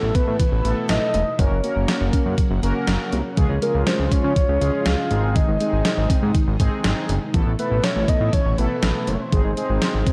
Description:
synth-pop; 121 BPM; 4/4; straight; A4 = 443 Hz
soft octave-layered synth lead; melody; 0.0-10.1 s; A4 to F5; -27 LUFS; equal; chorus, slapback echo
analog synth brass; accompaniment; 0.0-10.1 s; Ab3 to Bb4; -30 LUFS; equal; chorus
string machine, full ensemble; sustained chords; 0.0-10.1 s; B2 to Gb4; -32 LUFS; equal; ensemble chorus
fat analog bass; bass; 0.0-10.0 s; E1 to Db3; -24 LUFS; equal
gated 80s digital drum machine; drums; 0.1-10.1 s; hi-hat, kick drum, snare drum; -24 LUFS; equal; gated reverb, gated reverb snare
soft round pluck; arpeggios; 0.2-10.1 s; Eb3 to Db4; -33 LUFS; equal
light reverb, digital ambience; dark, warm production; -20 LUFS; mono
0.0-10.1 A section
0.0 Asus2; 1.4 Gb; 3.4 Db; 5.1 Ab; 7.3 Asus2; 9.3 Ab

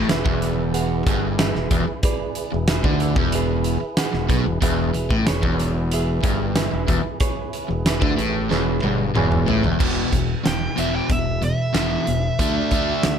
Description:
classic rock; 93 BPM; 4/4; straight; E mixolydian; A4 = 440 Hz
tonewheel organ; sustained chords; 0.0-13.2 s; D4 to B4; -33 LUFS; right 1 dB; slow rotary speaker, overdrive
crunchy overdriven guitar; riff; 0.0-13.2 s; E2 to D4; -23 LUFS; left 1 dB
modern bright fingered electric bass; bass; 0.0-13.2 s; E1 to D2; -25 LUFS; equal
bright reed electric piano; accompaniment; 0.1-9.8 s; G#4 to G#5; -28 LUFS; right 7 dB; overdrive
big rock drum kit; drums; 0.1-13.2 s; crash cymbal, hi-hat, kick drum, snare drum, toms; -23 LUFS; equal
fuzz lead guitar; melody; 10.5-13.2 s; E5 to G5; -26 LUFS; right 4 dB; distortion, slapback echo
light reverb; -18 LUFS; side -8 dB against mid
0.0-9.8 A section; 9.8-13.2 B section
drum fill 8.5-9.8; reed electric piano fill 8.8-9.8; lead electric guitar solo 9.8-13.2
0.0 E; 12.4 D

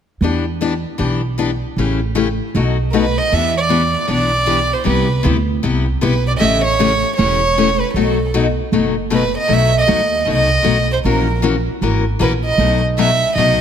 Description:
acoustic string swing (jazz manouche); 155 BPM; 4/4; swing 63% on 8ths; E dorian; A4 = 440 Hz
picked steel-string acoustic guitar; accompaniment; 0.2-13.6 s; B2 to A#4; -18 LUFS; left 6 dB
upright bass; bass; 0.2-13.6 s; E1 to E2; -19 LUFS; right 2 dB
warm violin; melody; 2.9-13.6 s; A4 to E5; -17 LUFS; right 3 dB
moderate concert hall reverb, RT60 2.1 s; close, detailed microphones; -14 LUFS; side -8 dB against mid
0.2-3.3 A section; 3.3-13.6 B section
0.2 Em7; 1.8 A7; 2.5 B7; 3.3 Em7; 4.9 Cmaj7; 6.4 A7; 8.0 B7; 11.0 F#7/A#; 12.6 B7

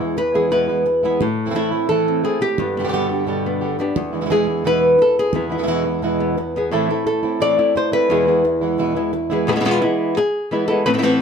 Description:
flamenco; 174 BPM; 4/4; straight; A4 = 440 Hz
flamenco guitar; melody; 0.0-11.2 s; E2 to D5; -17 LUFS; left 1 dB
flamenco guitar; stabs; 0.0-9.5 s; E2 to G4; -22 LUFS; right 3 dB; tape echo
moderate studio reverb, RT60 0.6 s; -16 LUFS; side -6 dB against mid
0.0-9.5 A section; 9.5-11.2 B section
nylon-string guitar solo 0.0-9.5
0.0 E; 1.2 Am; 2.6 G; 4.0 E; 6.7 Am; 8.1 E

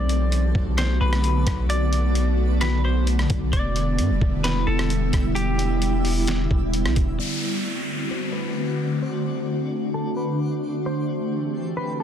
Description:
hip hop, atmospheric cloud-rap; 131 BPM; 4/4; half-time; A4 = 441 Hz
semi-hollow electric guitar; melody; 0.0-12.0 s; G4 to D5; -31 LUFS; left 1 dB; low-pass filter, digital delay
ethereal airy pad; sustained chords; 0.0-12.0 s; D3 to G4; -25 LUFS; equal; ensemble chorus, built-in reverb, sidechain pumping, low-pass filter
long sustained 808-style bass; bass; 0.0-7.2 s; E1 to G2; -22 LUFS; equal
twinkling granular texture; texture; 0.0-12.0 s; A3 to E5; -39 LUFS; equal; built-in reverb
trip hop sampler-style drum kit; drums; 0.1-7.1 s; hi-hat, kick drum, rim click, snare drum; -26 LUFS; equal
downlifter; sound effects; 7.2-10.9 s; -33 LUFS; left 2 dB
little or no reverb; dense, heavily limited modern master; -20 LUFS; side -9 dB against mid
0.0-7.2 A section; 7.2-12.0 B section
0.0 Bm7; 3.5 Em7; 7.2 D7; 10.9 Am7

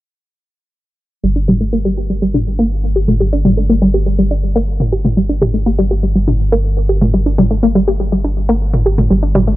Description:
melodic techno; 122 BPM; 4/4; straight; G minor; A4 = 440 Hz
analog pluck; arpeggios; 1.2-9.5 s; G3 to G4; -15 LUFS; equal; chorus, tape echo
round analog bass; bass; 1.2-9.6 s; G1; -16 LUFS; equal
electronic toms; drums; 1.5-9.4 s; -18 LUFS; equal
little or no reverb; dry, gritty hardware recording, low-pass filter; -12 LUFS; side -16 dB against mid
1.2-9.6 A section
filter sweep 1.2-9.6
1.2 G5

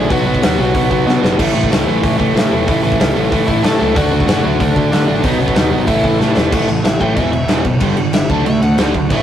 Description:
punk rock; 187 BPM; 4/4; straight; A4 = 441 Hz
overdriven semi-hollow guitar; melody; 0.0-1.2, 3.5-9.2 s; C#4 to A5; -22 LUFS; left 2 dB
distorted electric guitar; riff; 0.0-9.2 s; E2 to D4; -19 LUFS; right 6 dB; distortion
overdriven electric guitar; riff; 0.0-9.2 s; E2 to D4; -18 LUFS; left 5 dB
fuzz picked electric bass; bass; 0.0-9.2 s; E1 to D3; -19 LUFS; equal; overdrive
big rock drum kit; drums; 0.1-9.2 s; crash cymbal, hi-hat, kick drum, snare drum; -16 LUFS; equal
light reverb; rough rehearsal-room recording; -12 LUFS; side -10 dB against mid
0.0-6.5 A section; 6.5-9.2 B section
drum fill 1.1-1.4, 6.2-6.5; overdriven electric guitar solo 6.5-9.2
0.1 B5; 1.4 A; 4.0 D; 5.2 B; 5.9 A5; 7.2 E5; 7.8 G5; 8.3 D5

